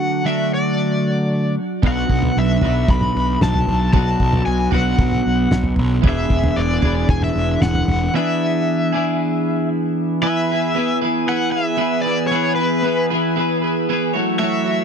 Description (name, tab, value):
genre	indie rock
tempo	114 BPM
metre	4/4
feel	straight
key	unclear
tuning	A4 = 440 Hz
part	cranked stack guitar	melody	0.0-14.8 s	B4 to B5	-23 LUFS	left 2 dB	overdrive, tremolo, tape echo
part	twelve-string electric guitar	riff	0.0-14.8 s	B2 to C#5	-19 LUFS	right 1 dB	double-tracked left and right
part	fuzz picked electric bass	bass	1.8-8.1 s	E1 to B1	-20 LUFS	equal	overdrive
part	cloth-damped thuddy drum kit	drums	1.8-8.0 s	kick drum, snare drum, toms	-18 LUFS	equal	none
part	brassy analog pad	sustained chords	10.2-14.8 s	E3 to G#4	-27 LUFS	equal	chorus
room	little or no reverb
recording	dry, close 1970s-style studio recording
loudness	-16 LUFS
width	side -7 dB against mid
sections	0.0-10.2 A section; 10.2-14.8 B section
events	none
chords	0.0 D; 1.8 Bm; 6.0 E7; 10.2 E; 14.1 F#m7